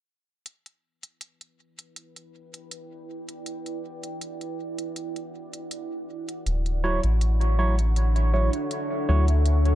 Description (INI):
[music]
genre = ambient dub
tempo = 80 BPM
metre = 4/4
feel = straight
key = E dorian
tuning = A4 = 440 Hz
[part]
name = deep dark ambient pad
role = sustained chords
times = 2.4-9.8 s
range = D4 to G5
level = -33 LUFS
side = right 1 dB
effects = chorus, built-in reverb
[part]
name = electronic hi-hat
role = drums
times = 0.5-9.8 s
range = none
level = -37 LUFS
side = equal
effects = none
[part]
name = soft dub sub bass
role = bass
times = 6.5-9.8 s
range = D1 to D2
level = -21 LUFS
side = equal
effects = none
[part]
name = overdriven tine electric piano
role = stabs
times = 6.8-9.2 s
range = F#3 to C#5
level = -28 LUFS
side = right 2 dB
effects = phaser, dub echo
[sound]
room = digital ambience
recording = dark, warm production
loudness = -23 LUFS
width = side -13 dB against mid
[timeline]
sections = 0.5-9.8 A section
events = fade-in on ambient pad 0.5-9.8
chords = 0.5 Em7; 6.5 Dmaj9